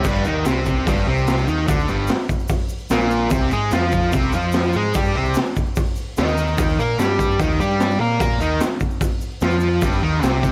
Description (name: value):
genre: garage rock duo or trio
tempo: 147 BPM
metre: 4/4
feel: straight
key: G minor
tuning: A4 = 440 Hz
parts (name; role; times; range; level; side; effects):
- fuzz guitar; riff; 0.0-10.5 s; G2 to Bb4; -23 LUFS; equal; distortion
- growling picked electric bass; bass; 0.0-10.5 s; G1 to Bb2; -25 LUFS; equal; overdrive
- raw garage drum kit; drums; 0.0-10.5 s; crash cymbal, hi-hat, kick drum, snare drum; -24 LUFS; equal; none
- egg shaker; percussion; 0.0-10.5 s; none; -42 LUFS; equal; none
room: light reverb, small room ambience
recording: none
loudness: -20 LUFS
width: mono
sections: 0.1-10.5 A section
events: none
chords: 0.1 Gm; 3.3 C5; 6.6 Eb5; 9.8 G5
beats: | 0.05 0.46 0.87 1.27 | 1.68 2.09 2.50 2.90 | 3.31 3.72 4.13 4.53 | 4.94 5.35 5.75 6.16 | 6.57 6.97 7.38 7.79 | 8.20 8.60 9.01 9.42 | 9.82 10.23